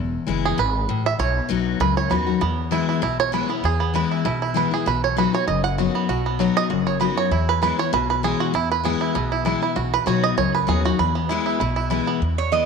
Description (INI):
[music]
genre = bluegrass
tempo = 196 BPM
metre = 4/4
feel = swing 54% on 8ths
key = E major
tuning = A4 = 438 Hz
[part]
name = picked steel-string acoustic guitar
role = accompaniment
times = 0.0-12.7 s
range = E2 to F#4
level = -23 LUFS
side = left 10 dB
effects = none
[part]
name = upright bass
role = bass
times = 0.0-12.6 s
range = E1 to E2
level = -25 LUFS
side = equal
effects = none
[part]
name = bluegrass banjo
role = melody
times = 0.5-12.2 s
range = F#3 to F#5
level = -22 LUFS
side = right 10 dB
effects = none
[part]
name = lap resonator guitar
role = melody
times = 12.4-12.7 s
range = C#5 to D#5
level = -19 LUFS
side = right 10 dB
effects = none
[sound]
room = moderate plate reverb, RT60 2.6 s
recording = 1960s-style stereo with parts hard left and right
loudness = -19 LUFS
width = side -5 dB against mid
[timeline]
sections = 0.0-12.2 A section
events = five-string banjo solo 0.0-12.2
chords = 0.0 E; 1.2 B; 2.4 E; 4.9 B; 7.3 E; 9.8 B; 11.0 E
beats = 0.27 0.58 0.88 | 1.19 1.50 1.80 2.11 | 2.41 2.72 3.02 3.33 | 3.64 3.94 4.25 4.55 | 4.86 5.17 5.47 5.78 | 6.09 6.39 6.70 7.00 | 7.31 7.62 7.92 8.23 | 8.54 8.85 9.15 9.46 | 9.76 10.07 10.38 10.68 | 10.99 11.30 11.60 11.91 | 12.22 12.52